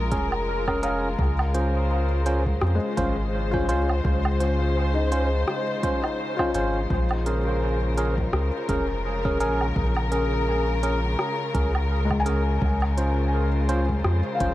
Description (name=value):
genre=ambient dub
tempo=84 BPM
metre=4/4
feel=swing 57% on 16ths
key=Bb minor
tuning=A4 = 441 Hz
part: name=rich studio string section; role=sustained chords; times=0.0-14.5 s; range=Db3 to C5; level=-29 LUFS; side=left 2 dB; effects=none
part: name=felt-muted upright piano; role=arpeggios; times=0.0-7.1, 12.0-14.5 s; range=Ab3 to Ab5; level=-31 LUFS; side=left 4 dB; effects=dub echo
part: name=soft dub sub bass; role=bass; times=0.0-14.5 s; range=F1 to F2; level=-24 LUFS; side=equal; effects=none
part: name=barky tine electric piano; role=stabs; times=0.1-14.5 s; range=Db4 to C5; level=-28 LUFS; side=right 2 dB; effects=dub echo
part: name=electronic kick drum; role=drums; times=0.1-14.5 s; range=none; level=-29 LUFS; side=equal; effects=overdrive
part: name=organic electronic drum kit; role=drums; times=0.1-14.5 s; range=hi-hat, rim click, woodblock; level=-32 LUFS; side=right 1 dB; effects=dub echo
room=little or no reverb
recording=echo-heavy mix, vinyl crackle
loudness=-21 LUFS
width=side -15 dB against mid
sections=0.0-14.5 A section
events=none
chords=0.0 Bbm7; 1.2 Dbmaj7; 6.9 Bbm7; 12.6 Dbmaj7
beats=0.47 | 1.19 1.90 2.62 3.33 | 4.05 4.76 5.47 6.19 | 6.90 7.62 8.33 9.05 | 9.76 10.47 11.19 11.90 | 12.62 13.33 14.05